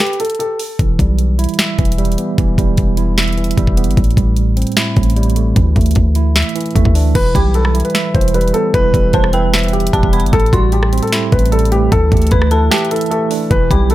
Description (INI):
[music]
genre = hip hop, trap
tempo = 151 BPM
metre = 4/4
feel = half-time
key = E minor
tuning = A4 = 442 Hz
[part]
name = dark concert grand piano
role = melody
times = 0.0-0.8, 7.2-13.9 s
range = F#4 to C5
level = -18 LUFS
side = left 1 dB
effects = analog delay
[part]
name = trap drum kit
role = drums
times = 0.0-13.9 s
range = crash cymbal, hi-hat, kick drum, rim click, snare drum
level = -16 LUFS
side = equal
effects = none
[part]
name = tine electric piano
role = accompaniment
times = 0.8-13.9 s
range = A2 to E5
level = -18 LUFS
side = right 4 dB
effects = medium stereo tremolo, analog delay
[part]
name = hard-hitting 808-style bass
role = bass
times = 0.8-13.9 s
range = E1 to D2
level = -14 LUFS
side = equal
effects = none
[part]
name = dark detuned synth bell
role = second line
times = 7.3-13.9 s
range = G5 to C6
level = -24 LUFS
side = right 1 dB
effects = chorus, tremolo, analog delay
[part]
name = ethereal airy pad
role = sustained chords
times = 13.7-13.9 s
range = E3 to G4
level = -27 LUFS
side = right 1 dB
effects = ensemble chorus, built-in reverb
[sound]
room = digital ambience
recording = echo-heavy mix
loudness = -11 LUFS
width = side -15 dB against mid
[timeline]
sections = 0.0-7.2 A section; 7.2-13.9 B section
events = break 0.0-0.8, 12.7-13.5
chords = 0.0 N.C.; 0.8 Em; 4.0 Am7; 5.6 Dsus2; 7.2 Em; 10.3 Am7; 11.9 Dsus2